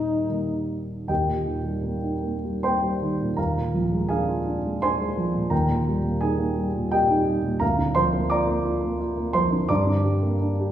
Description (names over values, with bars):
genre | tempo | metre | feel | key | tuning
classical, romantic duo for French horn and grand piano | 72-88 BPM | 3/4 | rubato | Eb major | A4 = 440 Hz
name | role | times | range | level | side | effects
clear French horn | melody | 0.0-0.7 s | Eb4 | -27 LUFS | left 4 dB | none
dark concert grand piano | accompaniment | 0.0-10.7 s | Eb1 to D6 | -22 LUFS | right 1 dB | none
room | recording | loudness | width
wet recital hall reverb, RT60 1.7 s | heard from further back in the room | -22 LUFS | side -11 dB against mid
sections
0.0-1.1 A section; 1.1-10.7 B section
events
none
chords
0.0 Eb; 3.4 Bb7/Eb; 5.5 Eb; 7.6 Bb/D; 9.7 Gm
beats
0.28 | 1.09 1.83 2.63 | 3.38 4.10 4.81 | 5.51 6.21 6.92 | 7.61 8.31 9.00 | 9.70 10.41